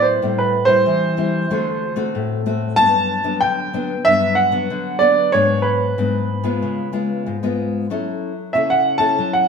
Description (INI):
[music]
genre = samba and choro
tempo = 94 BPM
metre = 4/4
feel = straight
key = unclear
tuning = A4 = 439 Hz
[part]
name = warm grand piano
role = melody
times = 0.0-9.5 s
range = B4 to A5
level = -16 LUFS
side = right 2 dB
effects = none
[part]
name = nylon-string guitar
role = accompaniment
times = 0.0-9.5 s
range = G2 to A4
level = -21 LUFS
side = left 3 dB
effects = none
[sound]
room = wet stone room reverb, RT60 1.2 s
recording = band playing live in one room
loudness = -16 LUFS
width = side -6 dB against mid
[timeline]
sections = 0.0-9.5 A section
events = none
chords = 0.2 Am7; 1.5 D7; 2.8 Gmaj7; 5.3 G#m7b5; 6.6 C#7; 7.9 F#m7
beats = | 0.22 0.86 1.50 2.14 | 2.78 3.42 4.06 4.70 | 5.34 5.98 6.62 7.26 | 7.90 8.54 9.18